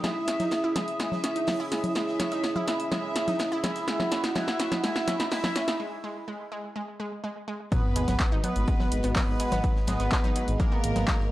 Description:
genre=melodic techno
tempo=125 BPM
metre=4/4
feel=straight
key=G# minor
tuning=A4 = 440 Hz
part: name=resonant sweep polysynth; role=melody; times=0.0-11.3 s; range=A#3 to E4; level=-32 LUFS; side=right 2 dB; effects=chorus, cassette tape, sidechain pumping, analog delay
part: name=warm studio violin section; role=second line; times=0.0-11.3 s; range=A#4 to E5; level=-35 LUFS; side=left 1 dB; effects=sidechain pumping, analog delay
part: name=dark analog pad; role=sustained chords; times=0.0-11.3 s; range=G#3 to D#6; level=-36 LUFS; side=right 1 dB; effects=chorus, sidechain pumping
part: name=wide unison pluck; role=arpeggios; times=0.0-11.1 s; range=F#3 to E4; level=-35 LUFS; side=equal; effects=sidechain pumping, analog delay
part: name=huge arena drum kit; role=drums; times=0.0-11.3 s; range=hi-hat, ride cymbal, snare drum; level=-47 LUFS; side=equal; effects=none
part: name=punchy analog drum machine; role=drums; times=0.0-11.2 s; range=congas, handclaps, hi-hat, snare drum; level=-30 LUFS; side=left 1 dB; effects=sidechain pumping on hats, sidechain pumping on perc
part: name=electronic kick drum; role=drums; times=7.7-11.2 s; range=none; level=-27 LUFS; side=equal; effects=none
part: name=sub drop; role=sound effects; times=7.7-9.6 s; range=none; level=-36 LUFS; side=equal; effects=none
part: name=dark detuned saw bass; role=bass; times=8.0-11.3 s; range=G#1 to G#2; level=-29 LUFS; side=equal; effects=sidechain pumping
room=moderate digital room reverb, RT60 1.0 s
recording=dry, gritty hardware recording, cassette tape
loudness=-25 LUFS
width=side -16 dB against mid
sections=0.0-7.7 A section; 7.7-11.3 B section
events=build-up 0.0-7.7; drum fill 0.0-5.8; filter sweep on analog polysynth 0.0-7.7; break 5.8-7.7; drop 7.7-11.3; impact 7.7-9.6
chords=0.0 C#madd9; 3.9 F#sus2; 7.7 G#m7

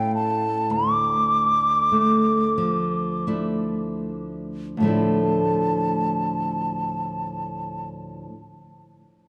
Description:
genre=celtic folk, Celtic slow air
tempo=24-37 BPM (dotted quarters)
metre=6/8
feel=rubato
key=D minor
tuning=A4 = 440 Hz
part: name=wooden flute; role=melody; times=0.0-7.9 s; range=G5 to D6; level=-25 LUFS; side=equal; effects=none
part: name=flamenco guitar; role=accompaniment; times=0.0-8.4 s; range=D2 to E4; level=-26 LUFS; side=equal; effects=none
room=wet church reverb, RT60 3.5 s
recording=dark, warm production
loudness=-23 LUFS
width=mono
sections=0.0-4.8 A section; 4.8-9.3 B section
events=slowing down 0.0-4.8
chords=0.0 A; 0.7 Dmadd9

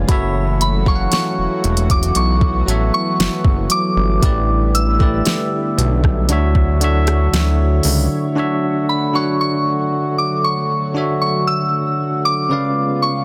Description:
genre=contemporary R&B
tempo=58 BPM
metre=4/4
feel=straight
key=D major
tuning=A4 = 441 Hz
part: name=bell-like tine electric piano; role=accompaniment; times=0.0-13.2 s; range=C#3 to G#5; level=-23 LUFS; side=equal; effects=none
part: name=lush unison pad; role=sustained chords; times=0.0-13.2 s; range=D3 to C#5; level=-27 LUFS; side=equal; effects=chorus
part: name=fat analog bass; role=bass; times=0.0-8.1 s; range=E1 to D2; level=-19 LUFS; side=equal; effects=none
part: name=smooth R&B drum kit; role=drums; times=0.1-8.1 s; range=hi-hat, kick drum, rim click, snare drum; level=-20 LUFS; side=equal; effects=none
part: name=synth chime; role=texture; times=0.1-3.7 s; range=B5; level=-36 LUFS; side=equal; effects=ensemble chorus, phaser, tape echo
part: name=soft synth bell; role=melody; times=0.6-13.2 s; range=B5 to E6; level=-23 LUFS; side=equal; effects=chorus, tape echo
room=little or no reverb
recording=dense, heavily limited modern master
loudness=-17 LUFS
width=mono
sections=0.0-8.4 A section; 8.4-13.2 A section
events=none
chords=0.1 F#m7; 4.2 A9sus4; 6.3 Dmaj9; 8.4 Dmaj7; 12.5 C#7b9

